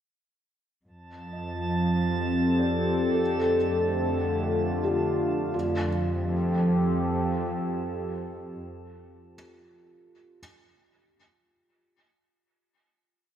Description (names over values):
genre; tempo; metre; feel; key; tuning
ambient; 77 BPM; 3/4; straight; F mixolydian; A4 = 441 Hz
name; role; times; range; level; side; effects
warbly tape-like pad; sustained chords; 1.3-8.6 s; D3 to A4; -26 LUFS; equal; chorus, built-in reverb, phaser
warm symphonic cello section; bass; 0.9-8.6 s; F2; -32 LUFS; equal; none
drifting glass-harmonics texture; texture; 1.1-5.6 s; A5; -38 LUFS; right 1 dB; chorus, built-in reverb
felt-muted upright piano; arpeggios; 1.3-10.4 s; F4 to Eb5; -35 LUFS; right 1 dB; diffuse ambient delay
room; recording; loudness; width
wet concert hall reverb, RT60 2.4 s; none; -24 LUFS; side -10 dB against mid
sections
0.9-5.5 A section; 5.5-7.9 final chord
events
fade-in on felt piano 0.9-5.5; fade-out on synth texture 0.9-5.5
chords
0.9 F7; 5.5 F